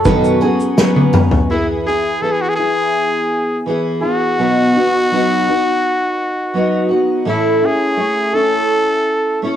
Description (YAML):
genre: acoustic pop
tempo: 83 BPM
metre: 4/4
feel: straight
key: E major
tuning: A4 = 439 Hz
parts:
  - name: picked steel-string acoustic guitar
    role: accompaniment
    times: 0.0-9.6 s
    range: A2 to A4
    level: -16 LUFS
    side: equal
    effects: double-tracked left and right, cassette tape
  - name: picked steel-string acoustic guitar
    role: arpeggios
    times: 0.0-1.3 s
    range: G#4 to B4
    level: -19 LUFS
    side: right 6 dB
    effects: cassette tape
  - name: loose indie drum kit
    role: drums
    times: 0.0-1.5 s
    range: kick drum, shaker, snare drum, toms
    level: -15 LUFS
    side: left 1 dB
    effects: cassette tape
  - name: tambourine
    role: percussion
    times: 0.4-1.3 s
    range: none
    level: -35 LUFS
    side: left 7 dB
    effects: none
  - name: growling trumpet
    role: melody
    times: 1.5-9.4 s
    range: E4 to A4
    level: -17 LUFS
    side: equal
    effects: cassette tape
room: light reverb, studio reverb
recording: home recording on cassette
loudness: -13 LUFS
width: side -10 dB against mid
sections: 0.0-1.5 A section; 1.5-9.6 B section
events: drum fill 0.8-1.5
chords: 0.1 Badd9; 1.5 E; 4.4 B; 7.3 A